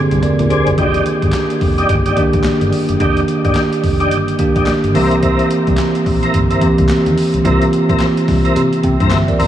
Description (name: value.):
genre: R&B, new jack swing.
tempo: 108 BPM.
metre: 4/4.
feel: swing 60% on 16ths.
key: unclear.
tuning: A4 = 439 Hz.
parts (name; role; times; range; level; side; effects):
bell-like tine electric piano; accompaniment; 0.0-9.5 s; D3 to G5; -15 LUFS; right 2 dB; none.
fingered electric bass; bass; 0.1-9.5 s; F1 to C3; -18 LUFS; left 1 dB; none.
boom bap sampler-style drum kit; drums; 0.1-9.5 s; handclaps, hi-hat, kick drum, snare drum, toms; -19 LUFS; left 1 dB; none.
tonewheel organ; stabs; 0.5-9.5 s; C4 to Bb4; -19 LUFS; left 1 dB; chorus vibrato, slow rotary speaker, analog delay.
room: moderate huge ambient reverb, RT60 8.9 s.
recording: dreamy mix soaked in reverb, small room ambience.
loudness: -12 LUFS.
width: side -11 dB against mid.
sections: 0.8-9.5 A section.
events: drum fill 0.0-0.8.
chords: 0.0 Bb9; 0.8 Ebmaj7/F; 4.9 C7.